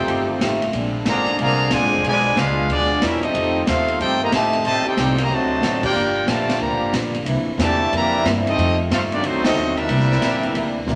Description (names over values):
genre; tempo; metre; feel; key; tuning
jazz, big band swing; 183 BPM; 4/4; swing 64% on 8ths; F major; A4 = 441 Hz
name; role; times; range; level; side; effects
clear trumpet section; melody; 0.0-10.9 s; A3 to Bb5; -23 LUFS; equal; none
bright trombone section; second line; 0.0-10.9 s; Bb2 to G4; -27 LUFS; equal; none
mellow trombone section; sustained chords; 0.0-11.0 s; Bb2 to F4; -30 LUFS; equal; none
upright bass; bass; 0.0-11.0 s; F1 to A2; -28 LUFS; equal; none
fingerpicked swing-style acoustic guitar; accompaniment; 0.1-11.0 s; G2 to G4; -29 LUFS; equal; none
swinging big-band drum kit; drums; 0.1-11.0 s; crash cymbal, hi-hat, kick drum, ride cymbal, snare drum, toms; -27 LUFS; equal; none
room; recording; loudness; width
wet studio reverb, RT60 0.7 s; none; -19 LUFS; mono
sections
0.0-11.0 A section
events
band accent 5.8, 9.4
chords
0.0 F9; 0.7 Bb9; 2.0 Bdim7; 3.3 F9; 4.6 Am7b5; 5.3 D7b9; 6.0 Gm7; 7.3 C9; 8.6 F9; 9.2 D7b9; 9.9 C9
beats
0.07 0.40 | 0.73 1.05 1.38 1.71 | 2.03 2.36 2.69 3.01 | 3.34 3.67 3.99 4.32 | 4.65 4.97 5.30 5.63 | 5.96 6.28 6.61 6.94 | 7.27 7.59 7.92 8.25 | 8.58 8.91 9.24 9.56 | 9.89 10.22 10.55 10.88